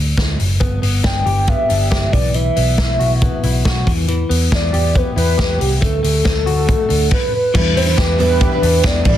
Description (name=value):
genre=jangly indie pop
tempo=138 BPM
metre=4/4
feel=straight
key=E minor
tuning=A4 = 440 Hz
part: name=vintage muted picked electric bass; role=bass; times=0.0-9.2 s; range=F#1 to E2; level=-17 LUFS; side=equal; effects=none
part: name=vintage drum kit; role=drums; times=0.2-9.2 s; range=crash cymbal, hi-hat, kick drum, ride cymbal, snare drum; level=-18 LUFS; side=equal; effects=none
part: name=direct-recorded clean electric guitar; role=arpeggios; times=0.6-9.2 s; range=E3 to G4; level=-23 LUFS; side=left 3 dB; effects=analog chorus
part: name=warbly nostalgic lead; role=melody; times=1.1-9.2 s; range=G4 to G5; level=-19 LUFS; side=equal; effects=chorus, tremolo
part: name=picked twelve-string acoustic guitar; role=accompaniment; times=7.5-9.2 s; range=E3 to B4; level=-22 LUFS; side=right 6 dB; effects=none
room=light reverb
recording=dense, heavily limited modern master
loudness=-13 LUFS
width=side -11 dB against mid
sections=0.0-7.5 A section; 7.5-9.2 B section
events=none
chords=0.0 D; 0.6 G; 2.1 Bsus4; 3.9 Em; 5.8 D; 7.5 Em7